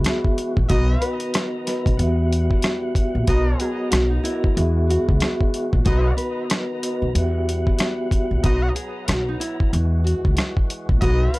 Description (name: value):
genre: hip hop, boom-bap hip-hop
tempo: 93 BPM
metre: 4/4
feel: swing 60% on 16ths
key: unclear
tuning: A4 = 440 Hz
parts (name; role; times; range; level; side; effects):
- nylon-string guitar; melody; 0.0-11.4 s; D#4 to B4; -27 LUFS; equal; high-pass filter, low-pass filter, tape echo
- vibraphone with soft mallets; accompaniment; 0.0-8.4 s; B3 to E5; -25 LUFS; equal; cassette tape, high-pass filter, low-pass filter
- tonewheel organ; sustained chords; 0.0-11.4 s; D#3 to A#5; -36 LUFS; equal; overdrive, fast rotary speaker, high-pass filter, low-pass filter
- upright bass; bass; 0.0-11.3 s; A#1 to E2; -20 LUFS; equal; transformer saturation
- dusty soul sampler-style drum kit; drums; 0.0-11.4 s; hi-hat, kick drum, rim click, snare drum; -20 LUFS; equal; none
- mellow trumpet section; stabs; 0.7-11.4 s; D#4 to D#5; -32 LUFS; equal; high-pass filter, low-pass filter, tape echo
room: studio ambience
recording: dry, gritty hardware recording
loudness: -18 LUFS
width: side -21 dB against mid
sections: 0.0-11.4 A section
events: none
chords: 0.0 Eadd9; 0.7 Bmaj7; 2.0 Emadd9; 3.3 Bmaj7; 4.6 Eadd9; 5.9 Bmaj7; 7.1 Emadd9; 8.4 Bmaj7; 9.7 Eadd9